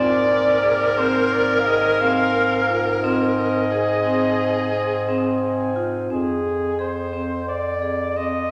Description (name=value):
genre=contemporary instrumental, chamber music in an uneven meter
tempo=175 BPM (eighths)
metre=9/8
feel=straight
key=unclear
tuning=A4 = 440 Hz
part: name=clear flugelhorn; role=melody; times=0.0-8.5 s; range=Ab4 to F5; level=-25 LUFS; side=equal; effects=none
part: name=warm viola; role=second line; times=0.0-5.8 s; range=Ab4 to Bb4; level=-25 LUFS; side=equal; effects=none
part: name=hand-pumped harmonium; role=sustained chords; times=0.0-6.1 s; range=C3 to Ab4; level=-35 LUFS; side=equal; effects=none
part: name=vibraphone with medium hard mallets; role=arpeggios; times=0.0-8.5 s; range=C4 to Ab4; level=-28 LUFS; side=equal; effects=none
part: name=mellow bass clarinet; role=bass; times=0.0-8.5 s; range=F2 to Ab2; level=-28 LUFS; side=equal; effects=none
room=wet recital hall reverb, RT60 1.6 s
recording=none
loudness=-20 LUFS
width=mono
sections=0.0-6.1 A section; 6.1-8.5 B section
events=none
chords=0.0 Abadd9; 6.1 Fm